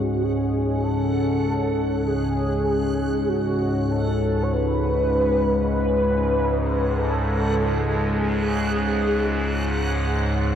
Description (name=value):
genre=dark ambient drone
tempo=49 BPM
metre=4/4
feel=straight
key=unclear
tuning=A4 = 440 Hz
part: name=mellow horn-like synth lead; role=melody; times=0.0-10.0 s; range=F#4 to C#5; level=-25 LUFS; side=equal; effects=ensemble chorus, ping-pong delay
part: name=deep dark ambient pad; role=sustained chords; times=0.0-10.6 s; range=G#3 to C#5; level=-28 LUFS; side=left 1 dB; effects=chorus, built-in reverb
part: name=analog drone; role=drone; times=0.0-10.6 s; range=C#2 to G#2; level=-23 LUFS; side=equal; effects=chorus
part: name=backwards swelling texture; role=texture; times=0.0-10.6 s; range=F#5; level=-36 LUFS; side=right 3 dB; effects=built-in reverb
room=wet cathedral reverb, RT60 5.7 s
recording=worn, warbling old tape, cassette tape, warbly pitch drift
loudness=-20 LUFS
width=side -9 dB against mid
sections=0.0-10.6 A section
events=fade-in on synth texture 0.0-10.6; fade-out on ambient pad 0.0-10.6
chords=0.0 C#5